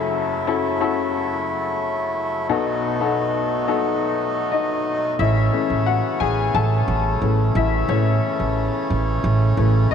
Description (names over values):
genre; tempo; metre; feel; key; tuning
piano-driven pop; 89 BPM; 4/4; straight; unclear; A4 = 435 Hz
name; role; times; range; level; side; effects
clear upright piano; accompaniment; 0.0-9.9 s; F#1 to A5; -22 LUFS; left 8 dB; none
accordion; sustained chords; 0.0-9.9 s; B2 to E4; -24 LUFS; right 1 dB; none
upright bass; bass; 5.2-9.9 s; A1; -19 LUFS; right 2 dB; none
room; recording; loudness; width
moderate plate reverb, RT60 2.9 s; none; -18 LUFS; side -7 dB against mid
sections
0.0-5.2 A section; 5.2-9.9 B section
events
upright piano solo 5.2-9.9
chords
0.0 F#m7; 2.5 B7; 5.2 A